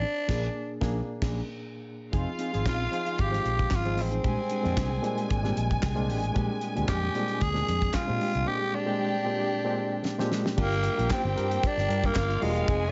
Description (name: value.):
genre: disco.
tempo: 114 BPM.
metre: 4/4.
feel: straight.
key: unclear.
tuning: A4 = 439 Hz.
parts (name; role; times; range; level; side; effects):
growling tenor saxophone; melody; 0.0-12.9 s; Ab3 to Ab4; -33 LUFS; equal; none.
barky reed electric piano; accompaniment; 0.0-12.9 s; Bb2 to G5; -35 LUFS; equal; overdrive, fast tremolo.
mellow electric guitar; accompaniment; 0.0-12.8 s; Ab3 to Ab4; -39 LUFS; equal; none.
fingered electric bass; bass; 0.0-12.9 s; E1 to Bb2; -32 LUFS; equal; none.
damped 70s drum kit; drums; 0.3-12.8 s; crash cymbal, handclaps, hi-hat, kick drum, snare drum; -34 LUFS; equal; gated reverb.
dark studio string section; second line; 2.1-12.9 s; Ab3 to Ab5; -37 LUFS; equal; none.
group handclap; percussion; 6.9-12.3 s; none; -44 LUFS; equal; none.
room: light reverb, small room ambience.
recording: nothing above 7.7 kHz.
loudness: -28 LUFS.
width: mono.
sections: 0.0-2.1 A section; 2.1-10.6 B section; 10.6-12.9 C section.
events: band accent 0.0-2.1; reed electric piano fill 1.1-2.1, 4.8-6.4; drum fill 10.1-10.6.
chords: 0.0 Bb7; 2.1 Fm7; 4.2 Bb13; 10.6 Gm7.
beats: | 0.03 0.56 1.08 1.61 | 2.14 2.67 3.19 3.72 | 4.25 4.78 5.31 5.83 | 6.36 6.89 7.42 7.94 | 8.47 9.00 9.53 10.05 | 10.58 11.11 11.63 12.16 | 12.68.